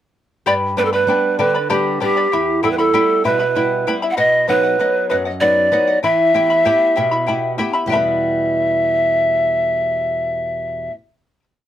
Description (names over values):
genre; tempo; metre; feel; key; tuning
andean folk, Andean ensemble; 64 BPM (dotted quarters); 6/8; straight; E minor; A4 = 440 Hz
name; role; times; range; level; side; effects
breathy large pan pipes; melody; 0.5-10.9 s; G4 to F#5; -16 LUFS; right 1 dB; none
charango; accompaniment; 0.5-11.4 s; E4 to B5; -21 LUFS; left 4 dB; none
flamenco guitar; accompaniment; 0.5-11.0 s; E2 to B4; -22 LUFS; right 1 dB; none
room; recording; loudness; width
light reverb; close, detailed microphones; -14 LUFS; side -11 dB against mid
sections
0.5-7.9 A section; 7.9-11.6 final chord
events
none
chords
0.5 G; 2.3 Em; 4.2 B; 6.0 Em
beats
| 0.46 1.39 | 2.32 3.25 | 4.17 5.10 | 6.03 6.96 | 7.90 8.83 | 9.76 10.70